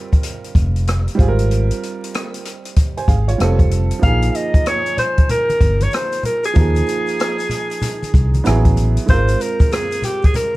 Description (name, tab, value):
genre	hip hop, jazz-hop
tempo	95 BPM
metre	4/4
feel	swing 63% on 16ths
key	unclear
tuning	A4 = 441 Hz
part	warm upright piano	accompaniment	0.0-10.6 s	F3 to Ab5	-24 LUFS	right 4 dB	none
part	open jazz drum kit	drums	0.1-10.5 s	hi-hat, kick drum, rim click	-17 LUFS	equal	none
part	woody fretless electric bass	bass	0.6-9.3 s	F1 to Eb2	-16 LUFS	equal	none
part	breathy alto saxophone	melody	4.0-10.6 s	G4 to F5	-20 LUFS	equal	none
part	maracas and congas	percussion	4.0-10.5 s	none	-26 LUFS	left 1 dB	none
room	studio reverb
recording	vinyl crackle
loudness	-14 LUFS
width	side -18 dB against mid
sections	0.0-10.6 A section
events	none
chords	0.0 Abmaj13; 3.4 F; 4.0 Bb5; 6.6 Ebsus24; 8.5 Asus2; 9.1 Ab69